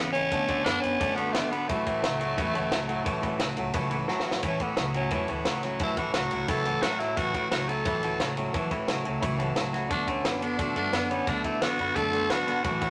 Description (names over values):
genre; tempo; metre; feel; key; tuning
rockabilly; 175 BPM; 4/4; straight; A major; A4 = 436 Hz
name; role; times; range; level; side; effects
growling tenor saxophone; melody; 0.0-12.9 s; A3 to A4; -32 LUFS; equal; none
honky-tonk upright piano; accompaniment; 0.0-12.9 s; B4 to B5; -40 LUFS; equal; none
picked steel-string acoustic guitar; accompaniment; 0.0-12.9 s; A2 to A4; -39 LUFS; equal; none
twangy electric guitar; riff; 0.0-12.9 s; E2 to B3; -34 LUFS; equal; none
upright bass; bass; 0.0-12.9 s; G#1 to A2; -40 LUFS; equal; none
compact cocktail drum kit; drums; 0.1-12.9 s; kick drum, ride cymbal, snare drum; -34 LUFS; equal; none
room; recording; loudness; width
moderate studio reverb, RT60 0.5 s; none; -28 LUFS; mono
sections
0.0-4.4 A section; 4.4-12.9 A section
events
honky-tonk piano fill 3.8-4.4; drum fill 4.1-4.4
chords
0.3 D6; 1.7 A6; 9.9 D6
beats
| 0.32 0.67 1.01 1.35 | 1.69 2.04 2.38 2.72 | 3.06 3.41 3.75 4.09 | 4.44 4.78 5.12 5.46 | 5.80 6.15 6.49 6.83 | 7.17 7.51 7.86 8.20 | 8.54 8.88 9.22 9.57 | 9.91 10.25 10.59 10.93 | 11.28 11.62 11.96 12.30 | 12.64